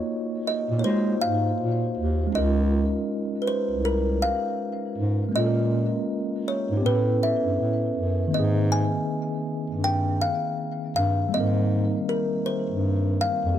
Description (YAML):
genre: lo-fi hip hop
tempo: 80 BPM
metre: 4/4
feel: swing 61% on 16ths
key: Ab major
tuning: A4 = 440 Hz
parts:
  - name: kalimba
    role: melody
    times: 0.0-13.6 s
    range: Bb4 to Ab5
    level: -27 LUFS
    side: equal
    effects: none
  - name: mellow tine electric piano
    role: accompaniment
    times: 0.0-13.6 s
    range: Eb3 to Db5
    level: -27 LUFS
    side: equal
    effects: medium stereo tremolo, cassette tape
  - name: dark bass clarinet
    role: bass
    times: 0.7-13.6 s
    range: C2 to Ab3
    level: -24 LUFS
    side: equal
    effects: none
room: light reverb, small room ambience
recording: dark, warm production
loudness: -22 LUFS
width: side -10 dB against mid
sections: 0.0-13.6 A section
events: none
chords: 0.0 Ebm9; 0.8 Ab13; 2.3 Db69; 5.3 Bbm7; 6.8 Aadd9; 8.3 Abmaj9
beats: 0.08 0.83 1.58 | 2.33 3.08 3.83 4.58 | 5.33 6.08 6.83 7.58 | 8.33 9.08 9.83 10.58 | 11.33 12.08 12.83 13.58